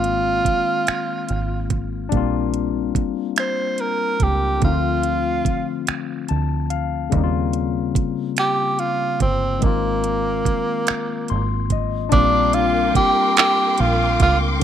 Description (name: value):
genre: slow six-eight R&B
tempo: 48 BPM (dotted quarters)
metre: 6/8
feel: straight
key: Bb major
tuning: A4 = 440 Hz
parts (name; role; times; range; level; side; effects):
- breathy tenor saxophone; melody; 0.0-14.4 s; Bb3 to C5; -20 LUFS; right 2 dB; slapback echo
- barky tine electric piano; accompaniment; 0.0-14.6 s; Db3 to C6; -24 LUFS; left 12 dB; overdrive
- deep dub fingered electric bass; bass; 0.0-14.6 s; G1 to Eb2; -23 LUFS; right 1 dB; none
- smooth R&B drum kit; drums; 0.0-14.6 s; finger snaps, handclaps, hi-hat, kick drum; -21 LUFS; right 4 dB; none
- warm studio string section; sustained chords; 12.1-14.6 s; Bb4 to D6; -26 LUFS; left 2 dB; none
room: moderate spring reverb, RT60 2.6 s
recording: 1960s-style stereo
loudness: -18 LUFS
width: side -9 dB against mid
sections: 0.0-12.1 A section; 12.1-14.6 B section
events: tine electric piano fill 5.9-7.1, 10.9-12.1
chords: 0.0 Ab69; 2.1 Bb69; 4.6 Dm7; 7.1 Eb13; 9.6 Ab69; 12.1 Bb69